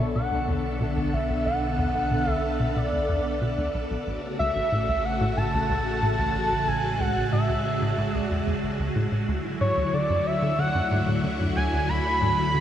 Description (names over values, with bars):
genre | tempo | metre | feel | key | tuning
ambient, sequencer-driven space music | 92 BPM | 4/4 | straight | unclear | A4 = 440 Hz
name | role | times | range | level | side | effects
pulse-width lead | melody | 0.0-12.6 s | C#5 to B5 | -27 LUFS | equal | chorus, tape echo
phased string machine | sustained chords | 0.0-12.6 s | C#3 to A4 | -28 LUFS | equal | ensemble chorus, phaser
tight sequencer bass | riff | 0.0-12.6 s | A1 to D3 | -28 LUFS | equal | ensemble chorus, cassette tape, tape echo
analog drone | bass | 0.0-12.6 s | A1 to D2 | -32 LUFS | equal | chorus
room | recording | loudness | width
wet shimmer reverb, RT60 7.8 s | none | -23 LUFS | side -10 dB against mid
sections
0.0-12.6 A section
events
filter sweep on analog synth bass 0.0-12.6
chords
0.0 Bm7; 4.1 A6; 9.3 Dadd9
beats
0.15 0.80 | 1.46 2.11 2.76 3.41 | 4.07 4.72 5.37 6.02 | 6.67 7.33 7.98 8.63 | 9.28 9.94 10.59 11.24 | 11.89 12.54